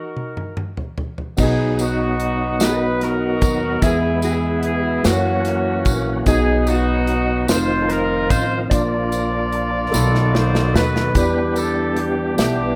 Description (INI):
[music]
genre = slow gospel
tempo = 49 BPM (dotted quarters)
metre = 6/8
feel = straight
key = unclear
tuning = A4 = 440 Hz
[part]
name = clear horn section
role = melody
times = 0.0-12.8 s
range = Bb3 to D5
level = -25 LUFS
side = equal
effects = none
[part]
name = mellow electric guitar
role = melody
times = 0.0-12.8 s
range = F#4 to D5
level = -32 LUFS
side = equal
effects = none
[part]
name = modern studio drum kit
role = drums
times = 0.2-12.6 s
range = crash cymbal, hi-hat, kick drum, snare drum, toms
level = -24 LUFS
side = equal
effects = none
[part]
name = mellow tine electric piano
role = accompaniment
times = 1.4-12.8 s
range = Bb2 to B5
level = -24 LUFS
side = equal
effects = none
[part]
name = overdriven tonewheel organ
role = sustained chords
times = 1.4-12.8 s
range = B2 to A4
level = -27 LUFS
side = equal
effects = fast rotary speaker, chorus vibrato
[part]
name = upright bass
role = bass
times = 1.4-12.8 s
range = F1 to Gb2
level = -27 LUFS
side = equal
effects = none
[part]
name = tambourine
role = percussion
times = 1.4-12.8 s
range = none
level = -35 LUFS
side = equal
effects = none
[sound]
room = light reverb, small room reverb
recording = rough home demo mix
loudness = -19 LUFS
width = mono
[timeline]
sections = 0.0-1.4 A section; 1.4-11.2 B section; 11.2-12.8 A section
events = drum fill 0.0-1.4, 9.9-11.2; stop 0.0-1.4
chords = 0.0 Ebm; 1.4 B; 3.8 E; 5.0 Gb7; 6.3 B; 7.5 F7; 8.7 Bb; 9.9 B7; 11.2 Em7